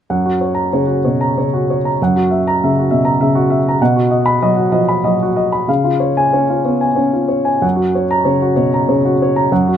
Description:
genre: neoclassical minimalist piano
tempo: 91-101 BPM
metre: 3/4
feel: rubato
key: F# major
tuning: A4 = 439 Hz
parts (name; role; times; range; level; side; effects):
- warm baby grand piano; solo; 0.1-9.8 s; F#2 to B5; -12 LUFS; equal; none
room: light reverb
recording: minimal, uncompressed stereo recording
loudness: -12 LUFS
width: side -9 dB against mid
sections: 0.1-9.8 A section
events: none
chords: 0.1 F#; 2.0 F#7; 3.8 B; 5.7 C#; 7.6 F#

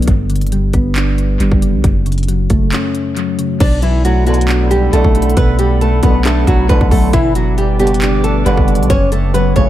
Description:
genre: hip hop, trap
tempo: 136 BPM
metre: 4/4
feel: half-time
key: B minor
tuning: A4 = 439 Hz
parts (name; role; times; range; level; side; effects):
- soft electric-piano-like synth keys; accompaniment; 0.0-9.7 s; F#2 to D4; -17 LUFS; left 1 dB; chorus, analog delay
- long sustained 808-style bass; bass; 0.0-9.7 s; F#1 to B1; -15 LUFS; equal; none
- trap drum kit; drums; 0.0-9.7 s; crash cymbal, handclaps, hi-hat, kick drum; -16 LUFS; equal; none
- flamenco guitar; melody; 3.6-9.7 s; E3 to D5; -16 LUFS; right 1 dB; analog delay
- warbly tape-like pad; sustained chords; 4.2-9.7 s; A4 to D6; -25 LUFS; right 1 dB; chorus, built-in reverb
- warm brass ensemble; stabs; 4.3-9.7 s; F#2 to D3; -23 LUFS; right 3 dB; none
room: digital ambience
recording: echo-heavy mix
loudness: -11 LUFS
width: side -13 dB against mid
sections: 0.0-3.6 A section; 3.6-9.7 B section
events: break 0.0-3.6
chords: 0.1 G; 1.8 F#m; 3.6 Bm7; 7.1 G; 8.9 F#m

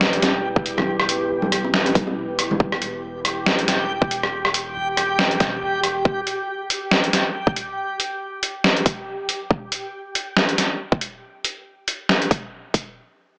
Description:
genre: deep dubstep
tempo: 139 BPM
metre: 4/4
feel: swing 57% on 16ths, half-time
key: E minor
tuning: A4 = 439 Hz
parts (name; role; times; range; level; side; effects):
- deep dark ambient pad; sustained chords; 0.0-6.1 s; E4 to B4; -29 LUFS; equal; chorus, built-in reverb
- soft dub sub bass; bass; 0.0-6.0 s; E1; -38 LUFS; equal; none
- trip hop sampler-style drum kit; drums; 0.0-12.8 s; hi-hat, rim click, snare drum; -19 LUFS; equal; overdrive
- backwards swelling texture; texture; 0.1-9.5 s; G4; -26 LUFS; equal; built-in reverb
- congas and bongos; percussion; 0.2-2.6 s; none; -26 LUFS; equal; dub echo
- electronic kick drum; drums; 0.6-12.8 s; none; -20 LUFS; equal; overdrive
room: moderate spring reverb, RT60 2.2 s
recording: dry, gritty hardware recording, small speaker sound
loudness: -19 LUFS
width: side -33 dB against mid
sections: 0.0-13.0 A section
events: filter sweep on ambient pad 0.0-6.1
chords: 0.0 Em

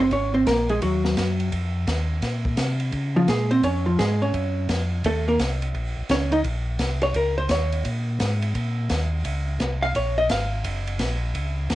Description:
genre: soul jazz organ trio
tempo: 171 BPM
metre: 4/4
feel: swing 64% on 8ths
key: Bb minor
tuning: A4 = 442 Hz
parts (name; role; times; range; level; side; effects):
- hollow-body jazz guitar; accompaniment; 0.0-10.6 s; F3 to F5; -22 LUFS; equal; cassette tape
- mellow tonewheel organ; bass; 0.0-11.8 s; Gb1 to Db3; -25 LUFS; equal; slow rotary speaker
- open jazz drum kit; drums; 0.1-11.8 s; hi-hat, kick drum, ride cymbal, snare drum; -29 LUFS; equal; none
room: light reverb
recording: home recording on cassette, nothing above 11.0 kHz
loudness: -21 LUFS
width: side -15 dB against mid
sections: 0.0-11.8 A section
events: hollow-body jazz guitar solo 0.0-11.8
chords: 0.0 Bbm7; 0.8 Ebm; 2.2 Bbm7; 5.0 Eb5; 7.8 Bbm7; 10.6 Gb

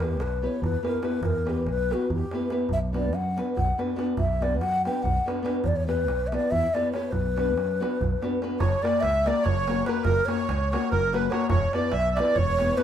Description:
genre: balkan folk, Balkan wedding band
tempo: 286 BPM (eighths)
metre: 7/8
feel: straight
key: B harmonic minor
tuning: A4 = 441 Hz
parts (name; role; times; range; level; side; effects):
- breathy mellow ney; melody; 0.0-12.8 s; F#4 to G5; -27 LUFS; left 1 dB; none
- nylon-string guitar; accompaniment; 0.0-12.8 s; A#3 to B4; -29 LUFS; left 2 dB; none
- fingered electric bass; bass; 0.0-12.7 s; E1 to F#2; -29 LUFS; equal; none
- darbuka; percussion; 0.0-12.8 s; none; -31 LUFS; right 2 dB; none
- accordion; second line; 8.6-12.8 s; A#4 to E5; -29 LUFS; right 4 dB; light tremolo tuning
room: moderate stone room reverb, RT60 1.0 s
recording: band playing live in one room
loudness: -23 LUFS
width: side -9 dB against mid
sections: 0.0-8.6 A section; 8.6-12.8 B section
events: none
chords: 0.0 Em; 2.7 Bm; 5.6 Em; 7.1 Bm; 8.6 F#; 11.5 Em

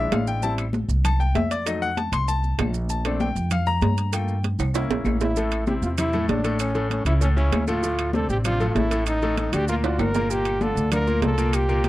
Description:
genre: latin, salsa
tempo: 195 BPM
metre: 4/4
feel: straight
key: unclear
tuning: A4 = 440 Hz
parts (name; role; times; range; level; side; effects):
- bright baby grand piano; accompaniment; 0.0-11.9 s; A2 to C6; -27 LUFS; left 3 dB; none
- upright bass; bass; 0.0-11.9 s; G1 to G2; -24 LUFS; equal; none
- claves; percussion; 0.1-11.7 s; none; -40 LUFS; left 8 dB; none
- congas; percussion; 0.1-11.9 s; none; -30 LUFS; left 2 dB; none
- maracas; percussion; 0.1-11.9 s; none; -39 LUFS; right 15 dB; none
- timbales; percussion; 0.1-11.9 s; none; -28 LUFS; right 7 dB; none
- brilliant trombone; melody; 5.2-11.9 s; C#4 to Bb4; -26 LUFS; equal; none
room: light reverb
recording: dry, close 1970s-style studio recording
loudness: -20 LUFS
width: side -16 dB against mid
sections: 0.0-5.4 A section; 5.4-11.9 B section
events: grand piano solo 0.0-5.4; drum fill 4.6-5.4, 9.8-10.3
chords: 0.4 Am7; 1.7 F7b9; 2.9 Bbmaj7; 4.1 Gm7; 4.7 C7b9; 5.4 Am; 6.6 A; 7.8 Dm9; 9.1 Ebmaj7#11/A; 9.7 Daug; 10.3 Gm9

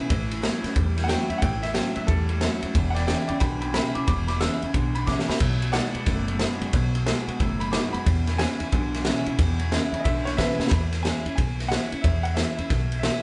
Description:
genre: rockabilly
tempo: 181 BPM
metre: 4/4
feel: swing 64% on 8ths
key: E mixolydian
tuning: A4 = 440 Hz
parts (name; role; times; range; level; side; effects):
- bright upright piano; melody; 0.0-13.2 s; A4 to E6; -34 LUFS; equal; none
- picked steel-string acoustic guitar; accompaniment; 0.0-13.2 s; E2 to F#4; -35 LUFS; equal; none
- electric guitar through a small old amp; riff; 0.0-10.7 s; E2 to A3; -33 LUFS; equal; none
- woody fretless electric bass; bass; 0.1-13.1 s; E1 to E2; -30 LUFS; equal; none
- raw garage drum kit; drums; 0.1-13.1 s; crash cymbal, kick drum, ride cymbal, snare drum; -28 LUFS; equal; none
room: moderate studio reverb, RT60 0.6 s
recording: band playing live in one room, nothing above 10.6 kHz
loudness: -25 LUFS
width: mono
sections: 0.0-10.7 A section; 10.7-13.2 B section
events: upright piano solo 0.0-10.7; drum fill 5.1-5.4, 10.6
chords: 0.1 A6; 2.8 E6; 5.4 B6; 8.1 E6

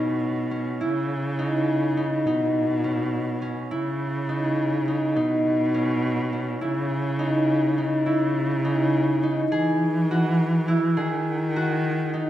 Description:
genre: contemporary instrumental, chamber music in an uneven meter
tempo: 206 BPM (eighths)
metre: 5/8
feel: straight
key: C# minor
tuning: A4 = 441 Hz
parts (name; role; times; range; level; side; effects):
- concert harp; arpeggios; 0.0-12.3 s; C#4 to G#4; -24 LUFS; equal; none
- warm cello; bass; 0.0-12.3 s; B2 to E3; -25 LUFS; equal; none
room: moderate recital hall reverb, RT60 1.3 s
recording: none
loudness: -21 LUFS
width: side -12 dB against mid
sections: 0.0-9.5 A section; 9.5-12.3 B section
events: none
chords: 0.0 Badd9; 0.8 C#madd9; 2.3 Badd9; 3.7 C#madd9; 5.2 Badd9; 6.6 C#madd9; 9.5 Eadd9; 11.0 G#5/D#

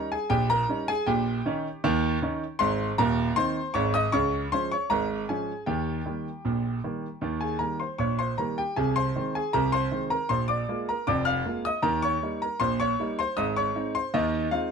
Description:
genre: ragtime piano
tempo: 78 BPM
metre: 2/4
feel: straight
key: Ab major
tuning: A4 = 445 Hz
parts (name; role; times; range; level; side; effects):
- clear grand piano; solo; 0.0-14.7 s; Eb1 to F6; -24 LUFS; equal; none
room: light reverb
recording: none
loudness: -24 LUFS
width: side -6 dB against mid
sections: 0.0-14.7 A section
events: none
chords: 0.0 Eb7; 1.1 Eb7/Bb; 2.6 Ab; 4.1 Db; 5.7 Eb; 8.8 Ab/C; 10.3 Bb7; 11.8 Eb7; 13.4 Ab

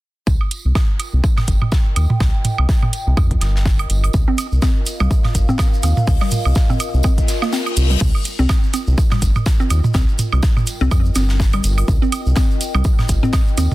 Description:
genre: minimal techno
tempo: 124 BPM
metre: 4/4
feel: swing 57% on 16ths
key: C minor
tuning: A4 = 440 Hz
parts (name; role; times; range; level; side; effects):
- round analog bass; bass; 0.3-13.7 s; G1 to F2; -16 LUFS; equal; tube saturation, sidechain pumping
- electronic kick drum; drums; 0.3-13.4 s; none; -16 LUFS; equal; none
- tight metal drum kit; drums; 0.3-13.7 s; hi-hat, snare drum, tambourine; -33 LUFS; equal; sidechain pumping on hats, high-pass filter on hats, high-pass filter on snare, sidechain pumping on perc, high-pass filter on perc, high-pass filter on room
- warbly tape-like pad; texture; 1.0-13.7 s; F4 to G5; -30 LUFS; left 1 dB; chorus, built-in reverb, sidechain pumping
- electronic woodblock and toms; percussion; 0.4-13.7 s; none; -22 LUFS; right 3 dB; tape echo
- house drum kit; drums; 0.5-13.7 s; crash cymbal, hi-hat; -24 LUFS; right 2 dB; none
- tube shaker; percussion; 4.1-13.7 s; none; -34 LUFS; right 1 dB; none
- hollow square pluck; riff; 4.3-13.6 s; G3 to C4; -24 LUFS; equal; chorus, sidechain pumping, dub echo
- reverse cymbal; sound effects; 7.2-8.0 s; none; -27 LUFS; left 7 dB; none
room: studio reverb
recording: dense, heavily limited modern master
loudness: -14 LUFS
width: side -18 dB against mid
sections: 0.3-8.0 A section; 8.0-13.7 B section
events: reverse cymbal 7.2-8.0; kick drops out 7.5-8.0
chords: 0.3 Cm

